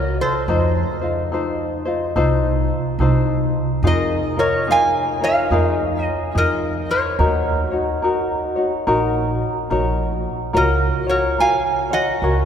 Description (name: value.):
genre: Hawaiian.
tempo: 72 BPM.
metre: 4/4.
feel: swing 63% on 8ths.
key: unclear.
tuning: A4 = 437 Hz.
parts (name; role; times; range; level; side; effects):
metal-body resonator slide guitar; melody; 0.0-12.4 s; A4 to G#5; -20 LUFS; right 1 dB; none.
tenor ukulele; accompaniment; 0.0-12.4 s; Eb4 to C#5; -21 LUFS; left 2 dB; none.
upright bass; bass; 0.0-12.4 s; A#1 to F2; -22 LUFS; right 1 dB; none.
room: wet cathedral reverb, RT60 4.5 s.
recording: recorded in a church or concert hall.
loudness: -17 LUFS.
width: side -8 dB against mid.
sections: 0.0-12.4 A section.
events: none.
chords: 0.5 F7; 3.8 A#7sus4/E#; 7.2 D#m7; 10.5 F#maj7/C#.